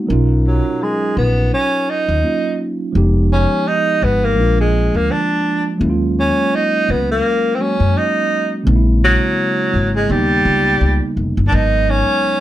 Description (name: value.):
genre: hip hop, jazz-hop.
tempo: 84 BPM.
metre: 4/4.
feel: swing 57% on 16ths.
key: unclear.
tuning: A4 = 439 Hz.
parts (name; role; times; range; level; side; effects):
mellow tine electric piano; accompaniment; 0.0-12.4 s; C#3 to A#4; -19 LUFS; right 2 dB; slow stereo tremolo.
upright bass; bass; 0.1-12.0 s; F1 to F#2; -16 LUFS; left 1 dB; none.
breathy tenor saxophone; melody; 0.5-12.4 s; F#3 to D#4; -16 LUFS; equal; slapback echo.
room: light reverb.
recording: none.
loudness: -13 LUFS.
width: side -13 dB against mid.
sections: 0.1-11.5 A section.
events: none.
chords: 0.1 Bmaj9#11; 2.9 Fm7b5; 4.4 A#7; 5.8 D#m11; 8.7 A#m7b5; 10.1 D#7b13; 11.5 G#m9.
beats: | 0.09 0.80 1.52 2.23 | 2.95 3.66 4.38 5.09 | 5.80 6.52 7.23 7.95 | 8.66 9.38 10.09 10.80 | 11.52 12.23.